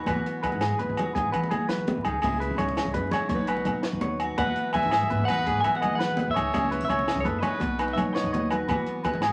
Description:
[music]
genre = highlife guitar band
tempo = 111 BPM (dotted quarters)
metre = 12/8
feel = straight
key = E major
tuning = A4 = 440 Hz
[part]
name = fingerpicked steel-string acoustic guitar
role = accompaniment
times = 0.0-9.3 s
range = G#2 to B4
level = -36 LUFS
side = equal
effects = none
[part]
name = clean electric guitar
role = arpeggios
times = 0.0-9.3 s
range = G#4 to C#5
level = -32 LUFS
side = equal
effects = none
[part]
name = upright bass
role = bass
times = 0.0-9.3 s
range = B1 to E3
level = -35 LUFS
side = equal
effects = none
[part]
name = compact cocktail drum kit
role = drums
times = 0.1-9.3 s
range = hi-hat, kick drum, snare drum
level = -38 LUFS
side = equal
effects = none
[part]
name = agogo bells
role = percussion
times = 0.1-9.3 s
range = none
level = -34 LUFS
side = equal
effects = none
[part]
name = congas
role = percussion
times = 0.1-9.2 s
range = none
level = -34 LUFS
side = equal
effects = none
[part]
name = clean electric guitar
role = melody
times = 4.4-8.5 s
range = C#5 to G#5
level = -31 LUFS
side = equal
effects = none
[part]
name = clear trumpet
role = second line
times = 4.4-8.6 s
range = A4 to E5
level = -36 LUFS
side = equal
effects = none
[sound]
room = moderate studio reverb, RT60 0.6 s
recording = vinyl crackle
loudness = -26 LUFS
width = mono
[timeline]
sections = 0.0-9.3 A section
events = none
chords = 0.1 Eadd9; 2.2 C#m; 3.3 Badd9; 4.4 Eadd9; 6.5 C#m; 7.6 Badd9; 8.7 Eadd9

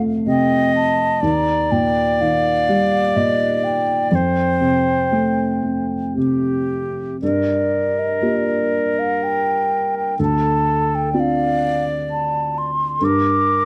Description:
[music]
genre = celtic folk, Celtic slow air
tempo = 55-64 BPM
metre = 3/4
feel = rubato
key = G minor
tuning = A4 = 443 Hz
[part]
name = felt-muted upright piano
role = accompaniment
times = 0.0-13.7 s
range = D2 to G4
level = -23 LUFS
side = equal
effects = none
[part]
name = mellow hollow wooden flute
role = melody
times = 0.3-13.7 s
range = D5 to D6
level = -23 LUFS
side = equal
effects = none
[part]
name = wooden flute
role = second line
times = 0.3-13.7 s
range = G4 to Eb5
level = -24 LUFS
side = equal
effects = none
[sound]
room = small room ambience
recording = dry, close 1970s-style studio recording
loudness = -19 LUFS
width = mono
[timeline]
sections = 0.0-7.2 A section; 7.2-13.7 B section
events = none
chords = 0.0 F; 1.2 Eb; 4.1 Fadd9; 7.2 Gm7; 10.2 Dm7; 13.0 Gm

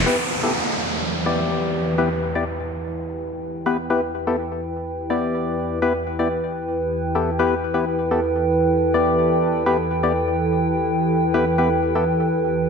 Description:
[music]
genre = house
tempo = 125 BPM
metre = 4/4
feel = swing 54% on 16ths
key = E minor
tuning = A4 = 440 Hz
[part]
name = sweeping resonant pad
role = sustained chords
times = 0.0-12.7 s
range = E2 to B4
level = -25 LUFS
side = right 2 dB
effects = chorus
[part]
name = warbly tape-like pad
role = texture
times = 2.2-12.7 s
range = E4 to G5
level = -23 LUFS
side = equal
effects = chorus, built-in reverb, tremolo
[part]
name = percussive organ stab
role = stabs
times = 0.1-12.0 s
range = B3 to D5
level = -22 LUFS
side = left 3 dB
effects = chorus, ping-pong delay
[part]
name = downlifter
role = sound effects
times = 0.1-3.9 s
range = none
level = -26 LUFS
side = right 1 dB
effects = none
[sound]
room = wet digital room reverb, RT60 1.2 s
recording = none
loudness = -19 LUFS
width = side -6 dB against mid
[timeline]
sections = 0.1-12.7 A section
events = filter sweep on analog synth pad 0.1-12.7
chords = 0.1 Em

